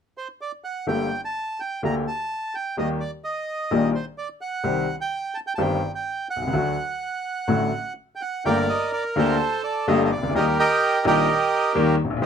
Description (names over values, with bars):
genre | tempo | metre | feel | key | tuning
tango | 127 BPM | 4/4 | rubato | G harmonic minor | A4 = 439 Hz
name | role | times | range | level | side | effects
bandoneon | melody | 0.2-12.3 s | G4 to Bb5 | -24 LUFS | right 3 dB | none
bright upright piano | accompaniment | 0.9-12.3 s | G1 to G4 | -22 LUFS | left 2 dB | none
room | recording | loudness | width
light reverb | minimal, uncompressed stereo recording | -21 LUFS | side -7 dB against mid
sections
0.9-8.5 A section; 8.5-12.3 B section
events
none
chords
0.0 N.C.; 0.9 Gmadd9; 2.8 Eb; 4.6 Cm; 6.5 D; 8.5 Gmadd9; 10.4 Eb